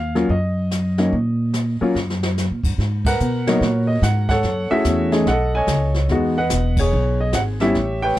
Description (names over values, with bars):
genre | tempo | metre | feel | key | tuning
jazz piano trio | 145 BPM | 4/4 | swing 64% on 8ths | G# minor | A4 = 440 Hz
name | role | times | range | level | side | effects
warm upright piano | melody | 0.0-8.2 s | Gb3 to G#5 | -20 LUFS | equal | none
upright bass | bass | 0.0-8.2 s | E1 to B2 | -20 LUFS | equal | none
jazz brush drum kit | drums | 0.2-8.2 s | brushed snare drum, crash cymbal, hi-hat, kick drum, snare drum | -26 LUFS | equal | none
room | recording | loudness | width
little or no reverb | none | -17 LUFS | side -14 dB against mid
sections
0.0-2.8 A section; 2.8-8.2 B section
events
drum fill 2.0-2.4; band accent 3.0, 6.7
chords
0.0 Ebmadd9; 2.8 G#m9; 4.4 F#m9; 5.3 B13; 6.1 Emaj7